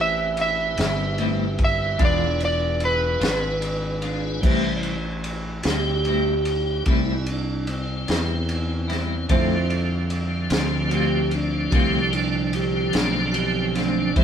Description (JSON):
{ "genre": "slow blues", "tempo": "49 BPM (dotted quarters)", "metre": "12/8", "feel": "straight", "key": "A minor", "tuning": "A4 = 440 Hz", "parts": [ { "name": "electric slide guitar", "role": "melody", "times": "0.0-4.4 s", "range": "B4 to E5", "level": "-24 LUFS", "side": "right 2 dB", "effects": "none" }, { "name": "warm grand piano", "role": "accompaniment", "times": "0.0-14.2 s", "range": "C4 to C5", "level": "-34 LUFS", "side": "right 6 dB", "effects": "none" }, { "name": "tonewheel organ", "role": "sustained chords", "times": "0.0-14.2 s", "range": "C3 to B4", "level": "-26 LUFS", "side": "right 2 dB", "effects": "chorus vibrato, slow rotary speaker" }, { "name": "sustaining fretless electric bass", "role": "bass", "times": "0.0-14.2 s", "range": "E1 to F2", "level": "-26 LUFS", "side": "left 1 dB", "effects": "none" }, { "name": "crunchy breakbeat drum kit", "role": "drums", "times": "0.4-14.2 s", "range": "crash cymbal, kick drum, ride cymbal, snare drum", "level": "-26 LUFS", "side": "equal", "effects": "none" }, { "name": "clean electric guitar", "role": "accompaniment", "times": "0.8-14.2 s", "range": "A2 to F4", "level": "-28 LUFS", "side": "left 4 dB", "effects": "tremolo" } ], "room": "light reverb", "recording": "band playing live in one room", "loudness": "-20 LUFS", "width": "side -8 dB against mid", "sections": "0.0-4.4 A section; 4.4-14.2 A section", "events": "electric slide guitar solo 0.0-4.4; tonewheel organ solo 4.4-14.2", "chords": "0.0 Am7; 2.0 E7b9; 4.4 Am7; 9.3 Dm7", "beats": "0.79 2.00 3.22 | 4.43 5.65 6.87 8.08 | 9.30 10.51 11.73 12.95 | 14.16" }